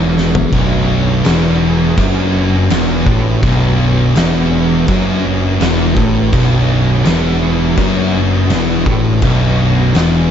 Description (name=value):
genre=stoner and doom metal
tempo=83 BPM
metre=4/4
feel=straight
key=B minor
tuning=A4 = 440 Hz
part: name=tonewheel organ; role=sustained chords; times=0.0-10.3 s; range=B3 to F#4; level=-26 LUFS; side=left 1 dB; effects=none
part: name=thick fuzz guitar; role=riff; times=0.0-10.3 s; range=B1 to A2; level=-17 LUFS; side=left 9 dB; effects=distortion
part: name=thick fuzz guitar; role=riff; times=0.0-10.3 s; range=B1 to A2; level=-16 LUFS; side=right 6 dB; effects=distortion
part: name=modern bright picked electric bass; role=bass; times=0.0-10.3 s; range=B0 to A1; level=-19 LUFS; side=equal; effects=overdrive
part: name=oversized low-tuned drum kit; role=drums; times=0.2-10.1 s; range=crash cymbal, kick drum, snare drum, toms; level=-18 LUFS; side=equal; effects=none
part: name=thick fuzz guitar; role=riff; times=0.5-10.3 s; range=B1 to A2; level=-18 LUFS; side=left 1 dB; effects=distortion
room=light reverb, small room ambience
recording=dark, warm production, nothing above 7.7 kHz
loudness=-11 LUFS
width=side -8 dB against mid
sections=0.0-10.3 A section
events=drum fill 0.2-0.5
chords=0.0 Bm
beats=| 0.53 1.25 1.98 2.70 | 3.43 4.15 4.88 5.60 | 6.33 7.05 7.78 8.50 | 9.23 9.95